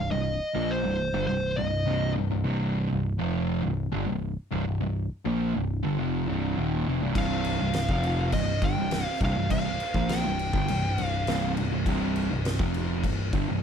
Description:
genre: stoner and doom metal.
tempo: 102 BPM.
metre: 4/4.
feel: straight.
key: C minor.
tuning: A4 = 437 Hz.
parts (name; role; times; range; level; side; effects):
fuzz lead guitar; melody; 0.0-2.1, 7.2-11.5 s; C5 to G5; -31 LUFS; equal; distortion, tape echo.
fuzz guitar; riff; 0.0-13.6 s; C2 to Bb3; -27 LUFS; equal; distortion.
picked electric bass; bass; 0.0-13.6 s; C1 to Bb1; -32 LUFS; equal; overdrive.
oversized low-tuned drum kit; drums; 7.2-13.5 s; crash cymbal, kick drum, snare drum; -30 LUFS; equal; none.
room: moderate studio ambience, RT60 0.5 s.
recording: none.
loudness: -25 LUFS.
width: side -7 dB against mid.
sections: 0.0-13.6 A section.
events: none.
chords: 0.0 C5.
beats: | 0.10 0.69 1.28 1.86 | 2.45 3.04 3.63 4.22 | 4.80 5.39 5.98 6.57 | 7.16 7.74 8.33 8.92 | 9.51 10.10 10.68 11.27 | 11.86 12.45 13.04 13.62.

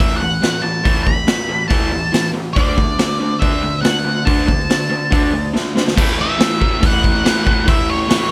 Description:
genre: garage rock duo or trio.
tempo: 141 BPM.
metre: 4/4.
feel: straight.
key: unclear.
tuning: A4 = 440 Hz.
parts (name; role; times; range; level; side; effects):
octave-fuzz lead guitar; melody; 0.0-8.3 s; C#5 to B5; -22 LUFS; equal; distortion.
raw garage guitar; riff; 0.0-8.3 s; A2 to D4; -22 LUFS; equal; overdrive.
raw garage drum kit; drums; 0.0-8.2 s; crash cymbal, hi-hat, kick drum, snare drum; -19 LUFS; equal; none.
room: light reverb.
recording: none.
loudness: -16 LUFS.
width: mono.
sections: 0.0-6.0 A section; 6.0-8.3 B section.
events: drum fill 5.5-6.0.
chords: 0.0 A5; 2.6 D5; 6.0 A5.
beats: 0.42 | 0.85 1.27 1.70 2.13 | 2.55 2.98 3.41 3.83 | 4.26 4.69 5.11 5.54 | 5.96 6.39 6.81 7.24 | 7.67 8.09.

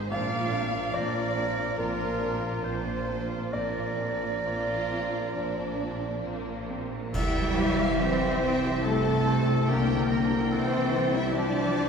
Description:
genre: cinematic, emotional film score for orchestra.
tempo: 64-73 BPM.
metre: 4/4.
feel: rubato.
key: C mixolydian.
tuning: A4 = 435 Hz.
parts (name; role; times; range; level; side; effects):
rich studio violin section; melody; 0.0-11.9 s; Bb3 to A5; -37 LUFS; left 1 dB; none.
hollow flute section; second line; 0.0-11.9 s; A4 to F5; -35 LUFS; right 3 dB; none.
warm studio violin section; second line; 0.0-11.9 s; A4 to F5; -36 LUFS; left 1 dB; none.
warm concert grand piano; accompaniment; 0.0-11.9 s; C2 to F5; -36 LUFS; left 2 dB; none.
warm studio viola section; accompaniment; 0.0-11.9 s; Eb3 to E4; -37 LUFS; right 2 dB; none.
warm oboe; second line; 0.1-11.9 s; F4 to D5; -36 LUFS; right 2 dB; none.
mellow French horn section; sustained chords; 0.1-11.9 s; F3 to C5; -31 LUFS; left 2 dB; none.
rich studio double bass section; bass; 0.1-11.9 s; Bb1 to C2; -34 LUFS; right 1 dB; none.
warm studio cello section; bass; 0.1-11.9 s; Bb2 to G3; -32 LUFS; right 2 dB; none.
cymbal swell, clash cymbals and concert bass drum; percussion; 3.5-8.8 s; none; -36 LUFS; equal; none.
room: wet church reverb, RT60 2.7 s.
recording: minimal, uncompressed stereo recording.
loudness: -25 LUFS.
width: side -6 dB against mid.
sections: 0.0-7.1 A section; 7.1-11.9 B section.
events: band accent 7.1-8.0.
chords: 0.1 Bbadd9; 7.1 C.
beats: | 0.11 0.95 1.78 2.63 | 3.53 4.46 5.37 6.25 | 7.14 8.00 8.84 9.67 | 10.51 11.34.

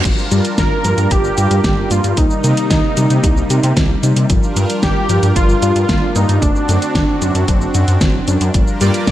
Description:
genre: synthwave.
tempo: 113 BPM.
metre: 4/4.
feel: straight.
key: G minor.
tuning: A4 = 440 Hz.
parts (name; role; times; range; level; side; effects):
brassy analog pad; sustained chords; 0.0-9.1 s; C3 to Bb4; -21 LUFS; right 1 dB; chorus, sidechain pumping.
soft round pluck; arpeggios; 0.0-9.1 s; F3 to G4; -24 LUFS; left 3 dB; chorus, digital delay.
wide detuned saw bass; bass; 0.0-9.1 s; F#1 to C3; -16 LUFS; equal; chorus, sidechain pumping.
electronic kick drum; drums; 0.0-9.1 s; none; -17 LUFS; equal; small room ambience.
pop drum kit; drums; 0.1-9.1 s; crash cymbal, hi-hat, shaker, snare drum; -20 LUFS; equal; small room ambience, gated reverb.
wide unison lead; melody; 0.6-9.1 s; D4 to D5; -19 LUFS; equal; digital delay.
analog synth brass; stabs; 8.8-9.1 s; G2 to D5; -24 LUFS; right 2 dB; chorus, digital delay.
room: digital ambience.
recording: none.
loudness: -12 LUFS.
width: side -13 dB against mid.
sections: 0.0-9.1 A section.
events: none.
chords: 0.0 Gm7; 2.2 Cm7; 4.3 Gm7; 6.4 D7/F#; 8.5 Gm7.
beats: | 0.05 0.58 1.11 1.64 | 2.17 2.70 3.23 3.77 | 4.30 4.83 5.36 5.89 | 6.42 6.95 7.48 8.01 | 8.54 9.08.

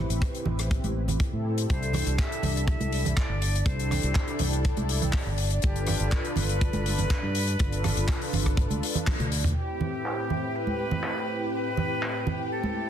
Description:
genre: nu-disco, nu disco.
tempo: 122 BPM.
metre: 4/4.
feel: straight.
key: A minor.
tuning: A4 = 440 Hz.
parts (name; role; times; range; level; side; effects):
warm analog pad; accompaniment; 0.0-12.9 s; A2 to B4; -33 LUFS; equal; ensemble chorus, tape echo.
fingered electric bass; bass; 0.0-9.5 s; G1 to A2; -28 LUFS; equal; sidechain pumping.
damped 70s drum kit; drums; 0.1-12.1 s; handclaps, hi-hat, rim click, snare drum, toms; -32 LUFS; left 2 dB; low-pass filter on hats, small room reverb, low-pass filter on toms, low-pass filter on snare, low-pass filter on room.
kick drum; drums; 0.2-9.2 s; none; -27 LUFS; equal; small room reverb, soft clipping on snare.
congas; percussion; 0.5-12.7 s; none; -32 LUFS; right 5 dB; none.
breathy bright concert flute; melody; 1.7-12.9 s; G4 to E5; -35 LUFS; left 1 dB; digital delay.
dark chamber string section; sustained chords; 1.7-12.9 s; D4 to G5; -38 LUFS; left 1 dB; sidechain pumping.
room: light reverb, studio ambience.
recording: dense, heavily limited modern master.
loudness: -24 LUFS.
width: side -9 dB against mid.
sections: 0.0-9.6 A section; 9.6-12.9 B section.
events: drum fill 9.1-9.6; band accent 9.1; filter sweep on drum 9.6-12.9.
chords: 0.0 Am9; 1.7 C69; 5.6 G7; 9.6 Am9.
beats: 0.22 0.71 1.20 | 1.70 2.19 2.68 3.17 | 3.66 4.16 4.65 5.14 | 5.63 6.12 6.61 7.11 | 7.60 8.09 8.58 9.07 | 9.56 10.06 10.55 11.04 | 11.53 12.02 12.52.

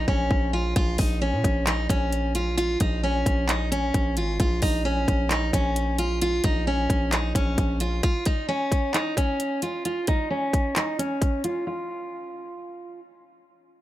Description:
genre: hip hop, trap.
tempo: 132 BPM.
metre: 4/4.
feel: half-time.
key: Bb minor.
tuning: A4 = 440 Hz.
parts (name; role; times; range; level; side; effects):
picked steel-string acoustic guitar; melody; 0.0-13.0 s; Db4 to F4; -26 LUFS; equal; low-pass filter, ping-pong delay.
hard-hitting 808-style bass; bass; 0.0-8.0 s; Ab1 to Bb2; -26 LUFS; equal; none.
trap drum kit; drums; 0.1-11.5 s; handclaps, hi-hat, kick drum; -25 LUFS; equal; none.
room: digital ambience.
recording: none.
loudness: -22 LUFS.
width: side -14 dB against mid.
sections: 0.0-8.0 A section; 8.0-11.7 B section; 11.7-13.8 C section.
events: break 0.0-0.8; filter sweep on steel-string acoustic guitar 8.0-11.7.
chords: 0.0 Bbm; 8.0 N.C..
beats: 0.31 | 0.76 1.22 1.67 2.12 | 2.58 3.03 3.49 3.94 | 4.40 4.85 5.31 5.76 | 6.21 6.67 7.12 7.58 | 8.03 8.49 8.94 9.40 | 9.85 10.31 10.76 11.21 | 11.67 12.12 12.58.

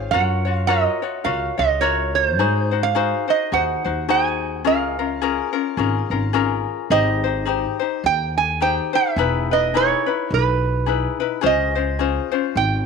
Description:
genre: Hawaiian.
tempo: 106 BPM.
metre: 4/4.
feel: swing 59% on 8ths.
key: Db major.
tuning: A4 = 440 Hz.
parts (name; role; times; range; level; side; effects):
metal-body resonator slide guitar; melody; 0.0-12.9 s; B4 to Ab5; -20 LUFS; right 10 dB; none.
ukulele; accompaniment; 0.0-12.9 s; Db4 to Db5; -22 LUFS; left 14 dB; none.
upright bass; bass; 0.0-12.9 s; E1 to Ab2; -24 LUFS; equal; none.
room: light reverb, studio reverb.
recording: 1960s-style stereo with parts hard left and right.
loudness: -18 LUFS.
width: side -5 dB against mid.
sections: 0.0-6.9 A section; 6.9-12.9 B section.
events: none.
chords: 0.1 Gbmaj7; 2.4 Ab7; 4.7 Db6; 6.9 Abmaj7; 9.2 Emaj7; 11.4 Dbmaj7.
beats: | 0.12 0.68 1.25 1.82 | 2.39 2.95 3.52 4.09 | 4.65 5.22 5.79 6.35 | 6.92 7.48 8.05 8.61 | 9.18 9.74 10.31 10.87 | 11.44 12.00 12.56.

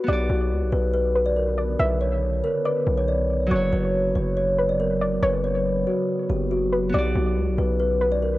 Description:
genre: hip hop.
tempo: 140 BPM.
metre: 4/4.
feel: half-time.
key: B harmonic minor.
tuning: A4 = 440 Hz.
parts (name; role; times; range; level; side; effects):
kalimba; melody; 0.0-8.4 s; F#4 to D5; -24 LUFS; equal; low-pass filter, cassette tape.
soft round pluck; second line; 0.0-8.4 s; B4 to E5; -29 LUFS; equal; chorus, cassette tape, tape echo.
Celtic harp; accompaniment; 0.0-8.4 s; F#3 to D5; -30 LUFS; right 1 dB; low-pass filter, cassette tape.
glassy FM pad; sustained chords; 1.1-8.4 s; C#3 to B3; -32 LUFS; left 1 dB; ensemble chorus, built-in reverb, cassette tape.
distorted 808-style bass; bass; 0.1-8.4 s; F#1 to C#2; -25 LUFS; equal; distortion.
room: light reverb, small room ambience.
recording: home recording on cassette.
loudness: -20 LUFS.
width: side -17 dB against mid.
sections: 0.1-8.4 A section.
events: none.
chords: 0.1 Bmadd9; 3.5 F#sus4; 6.9 Bmadd9.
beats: | 0.08 0.51 0.94 1.37 | 1.80 2.23 2.65 3.08 | 3.51 3.94 4.37 4.80 | 5.22 5.65 6.08 6.51 | 6.94 7.37 7.80 8.22.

